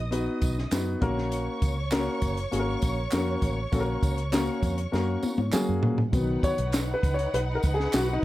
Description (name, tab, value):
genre	uptempo 1960s-style soul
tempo	100 BPM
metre	4/4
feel	straight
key	F# major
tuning	A4 = 443 Hz
part	dark studio string section	second line	0.0-8.2 s	D#4 to D#6	-36 LUFS	right 1 dB	none
part	vintage muted fingered electric bass	bass	0.0-8.2 s	F#1 to A#2	-29 LUFS	equal	none
part	warm baby grand piano	accompaniment	0.1-8.2 s	D#3 to C#5	-29 LUFS	left 2 dB	none
part	compact cocktail drum kit	drums	0.1-8.1 s	hi-hat, kick drum, snare drum, toms	-28 LUFS	equal	none
part	tambourine and handclaps	percussion	0.1-8.1 s	none	-40 LUFS	right 3 dB	none
room	studio reverb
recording	none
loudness	-24 LUFS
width	side -16 dB against mid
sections	0.0-6.1 A section; 6.1-8.2 B section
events	drum fill 4.9-6.1; grand piano solo 6.1-8.2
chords	0.0 B; 1.0 F#; 6.1 B